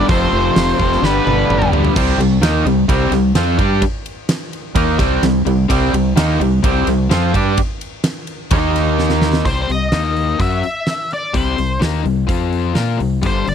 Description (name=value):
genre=classic rock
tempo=128 BPM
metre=4/4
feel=straight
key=unclear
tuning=A4 = 439 Hz
part: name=octave-fuzz lead guitar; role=melody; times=0.0-1.7, 9.5-13.5 s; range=B4 to E5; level=-20 LUFS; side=left 2 dB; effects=wah, distortion, slapback echo
part: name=cranked stack guitar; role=riff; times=0.0-13.5 s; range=F2 to Bb4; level=-19 LUFS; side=left 14 dB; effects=overdrive
part: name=distorted electric guitar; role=riff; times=0.0-9.5 s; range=C3 to B4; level=-18 LUFS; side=right 17 dB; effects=overdrive
part: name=growling fingered electric bass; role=bass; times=0.0-13.5 s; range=F1 to Bb2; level=-19 LUFS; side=right 1 dB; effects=overdrive
part: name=huge arena drum kit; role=drums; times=0.1-13.5 s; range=crash cymbal, hi-hat, kick drum, ride cymbal, snare drum, toms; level=-20 LUFS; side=right 1 dB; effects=none
room=little or no reverb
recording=dry, close 1970s-style studio recording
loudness=-14 LUFS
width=side -8 dB against mid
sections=0.0-2.0 A section; 2.0-9.5 B section; 9.5-13.5 C section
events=drum fill 1.0-2.0, 9.0-9.5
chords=0.1 F; 1.0 G; 2.0 C5; 8.5 Eb5; 9.5 C5; 9.9 Eb5; 10.4 C; 12.3 F5; 12.8 C5